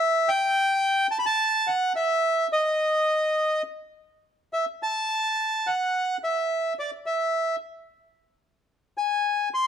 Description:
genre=tango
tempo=107 BPM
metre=4/4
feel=rubato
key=E minor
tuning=A4 = 440 Hz
part: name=bandoneon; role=solo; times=0.0-9.7 s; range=D5 to C6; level=-22 LUFS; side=equal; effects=none
room=moderate large studio reverb, RT60 1.2 s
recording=close, detailed microphones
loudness=-22 LUFS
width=side -9 dB against mid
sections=0.0-3.9 A section; 3.9-9.7 B section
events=none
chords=none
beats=0.54 1.10 | 1.66 2.22 2.79 3.36 | 3.94 4.51 5.07 5.63 | 6.19 6.75 7.30 7.86 | 8.41 8.97 9.52

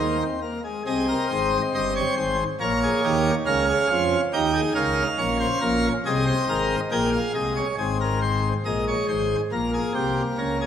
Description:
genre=classical, baroque-style 4-part fugue for pipe organ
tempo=69 BPM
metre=4/4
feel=straight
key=Ab major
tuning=A4 = 442 Hz
part: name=pipe organ, plenum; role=solo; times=0.0-10.7 s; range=G1 to G5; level=-21 LUFS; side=equal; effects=none
room=wet recital hall reverb, RT60 1.6 s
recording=lossy compression artefacts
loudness=-21 LUFS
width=side -9 dB against mid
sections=0.8-7.8 A section; 7.8-10.7 B section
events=none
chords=0.0 Eb5; 0.8 Ab; 2.6 Gdim/Bb; 4.3 Eb7; 6.0 Ab; 9.5 Gdim/Bb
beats=| 0.85 1.73 2.59 3.45 | 4.32 5.18 6.04 6.91 | 7.78 8.65 9.52 10.38

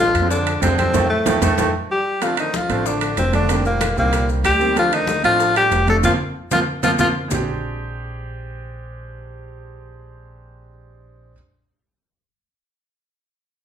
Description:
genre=Afro-Cuban jazz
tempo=188 BPM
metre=4/4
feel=straight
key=Bb mixolydian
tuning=A4 = 440 Hz
part: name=warm tenor saxophone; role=melody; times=0.0-7.1 s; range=A3 to A4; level=-19 LUFS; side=left 1 dB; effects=none
part: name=warm trombone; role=second line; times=0.0-7.1 s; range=A2 to A3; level=-29 LUFS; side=left 4 dB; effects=none
part: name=clear upright piano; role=accompaniment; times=0.0-11.3 s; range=D3 to G4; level=-24 LUFS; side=right 5 dB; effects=none
part: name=upright bass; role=bass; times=0.0-11.3 s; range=F1 to F2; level=-24 LUFS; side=equal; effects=none
part: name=congas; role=percussion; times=0.1-7.4 s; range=none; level=-29 LUFS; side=left 1 dB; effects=none
part: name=maracas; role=percussion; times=0.1-7.4 s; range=none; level=-33 LUFS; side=left 8 dB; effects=none
part: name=timbales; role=percussion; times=0.1-7.4 s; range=none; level=-28 LUFS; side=right 5 dB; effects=none
part: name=bongos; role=percussion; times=0.2-7.4 s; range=none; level=-31 LUFS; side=left 7 dB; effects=none
room=moderate large studio reverb, RT60 0.8 s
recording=band playing live in one room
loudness=-16 LUFS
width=side -8 dB against mid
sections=0.0-2.2 A section; 2.2-7.3 B section; 7.3-9.9 C section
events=band accent 0.9-2.2, 6.0-7.3; drum fill 1.3-2.2, 6.0-7.3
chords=0.0 Bb9 (rootless); 0.9 F9; 2.2 Dm7; 3.5 F9sus4; 4.8 Dm7; 6.0 Fsus4; 7.3 Bb13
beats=0.30 0.62 | 0.94 1.26 1.58 1.90 | 2.21 2.53 2.85 3.17 | 3.49 3.81 4.13 4.45 | 4.76 5.08 5.40 5.72 | 6.04 6.36 6.68 7.00 | 7.31 7.63 7.95 8.27 | 8.59 8.90 9.22 9.54

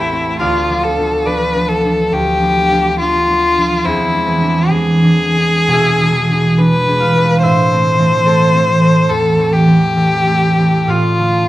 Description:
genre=classical, romantic duo for violin and harp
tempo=69 BPM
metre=4/4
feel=uneven beats, rubato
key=A minor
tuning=A4 = 440 Hz
part: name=rich violin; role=melody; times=0.0-11.5 s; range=E4 to C5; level=-14 LUFS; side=left 1 dB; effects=none
part: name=concert harp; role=accompaniment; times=0.0-11.5 s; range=A1 to A5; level=-14 LUFS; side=right 1 dB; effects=none
room=wet recital hall reverb, RT60 1.3 s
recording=none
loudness=-11 LUFS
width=side -15 dB against mid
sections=0.0-11.5 A section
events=none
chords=0.4 Bdim/D; 3.9 E7; 7.4 Am; 10.9 Dm/A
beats=| 0.41 1.26 2.12 3.00 | 3.86 4.72 5.70 6.59 | 7.44 8.26 9.10 9.96 | 10.89

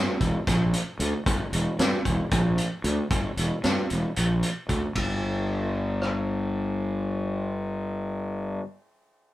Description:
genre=psychedelic rock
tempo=227 BPM (eighths)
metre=7/8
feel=straight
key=G dorian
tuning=A4 = 437 Hz
part: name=fuzz fingered electric bass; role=bass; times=0.0-8.6 s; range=E1 to G2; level=-26 LUFS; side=equal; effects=overdrive
part: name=vintage drum kit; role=drums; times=0.2-6.1 s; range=hi-hat, kick drum, ride cymbal, rim click, snare drum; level=-28 LUFS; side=equal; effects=none
room=moderate studio ambience, RT60 0.5 s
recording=band playing live in one room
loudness=-24 LUFS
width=side -15 dB against mid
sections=0.0-5.0 A section; 5.0-8.7 B section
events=none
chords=none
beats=0.21 0.48 0.74 1.00 | 1.27 1.53 1.79 2.06 2.32 2.58 2.85 | 3.11 3.38 3.64 3.90 4.17 4.43 4.70 | 4.96 5.22 5.49 5.75 6.02 6.28 6.55 | 6.81 7.08 7.34 7.60 7.87 8.13 8.40

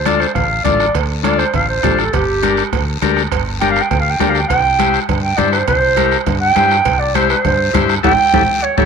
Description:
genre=latin, cumbia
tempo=203 BPM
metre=4/4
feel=straight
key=D minor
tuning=A4 = 440 Hz
part: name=warm clarinet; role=melody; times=0.0-8.9 s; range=G4 to G5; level=-15 LUFS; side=right 3 dB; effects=none
part: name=fingered electric bass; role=bass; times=0.0-8.9 s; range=G1 to G2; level=-21 LUFS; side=equal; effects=none
part: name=combo organ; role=accompaniment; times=0.1-8.9 s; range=D4 to C5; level=-19 LUFS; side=left 14 dB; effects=none
part: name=bombo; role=percussion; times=0.1-8.8 s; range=none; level=-21 LUFS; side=right 6 dB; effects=none
part: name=congas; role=percussion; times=0.1-8.8 s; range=none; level=-23 LUFS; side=left 10 dB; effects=none
part: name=cowbell and timbales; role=percussion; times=0.1-8.8 s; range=none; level=-24 LUFS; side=right 16 dB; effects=none
part: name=guiro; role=percussion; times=0.1-8.8 s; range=none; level=-29 LUFS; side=left 16 dB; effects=none
room=light reverb, studio reverb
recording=1960s-style stereo with parts hard left and right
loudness=-12 LUFS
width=side -6 dB against mid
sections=0.0-8.9 A section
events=clarinet solo 0.0-8.9; band accent 8.0-8.9; drum fill 8.5-8.9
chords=0.0 Dm; 2.1 Gm; 4.5 C; 8.0 A5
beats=0.06 0.36 0.66 | 0.95 1.25 1.54 1.84 | 2.13 2.43 2.73 3.02 | 3.32 3.61 3.91 4.20 | 4.50 4.79 5.09 5.38 | 5.68 5.97 6.27 6.56 | 6.86 7.15 7.45 7.74 | 8.04 8.33 8.63

